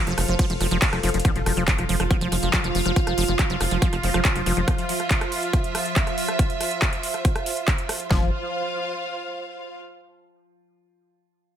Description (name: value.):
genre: psychedelic trance.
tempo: 140 BPM.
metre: 4/4.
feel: straight.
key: F major.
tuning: A4 = 442 Hz.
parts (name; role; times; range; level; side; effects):
evolving wavetable pad; sustained chords; 0.0-8.1 s; F3 to A4; -31 LUFS; right 2 dB; phaser, built-in reverb, sidechain pumping.
liquid acid bass; riff; 0.0-4.6, 8.1-8.3 s; F3; -27 LUFS; moving between left 5 dB and right 4 dB; chorus, auto-pan, sidechain pumping, tape echo.
rich studio string section; texture; 0.0-9.8 s; F4 to F5; -29 LUFS; right 1 dB; sidechain pumping.
tight sequencer bass; bass; 0.1-4.6, 8.1-8.3 s; F1; -26 LUFS; equal; none.
big-room dance drum kit; drums; 0.1-8.1 s; handclaps, hi-hat, ride cymbal, rim click; -27 LUFS; right 1 dB; overdrive.
big-room dance drum kit; drums; 0.4-8.2 s; kick drum, snare drum; -22 LUFS; equal; overdrive.
impact; sound effects; 1.3-3.0 s; none; -34 LUFS; equal; none.
room: light reverb.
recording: none.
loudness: -20 LUFS.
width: side -10 dB against mid.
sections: 0.0-1.2 A section; 1.2-8.1 B section; 8.1-9.8 C section.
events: drop 0.0-1.2; drum fill 1.0; impact 1.2-3.0.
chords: 0.0 F5.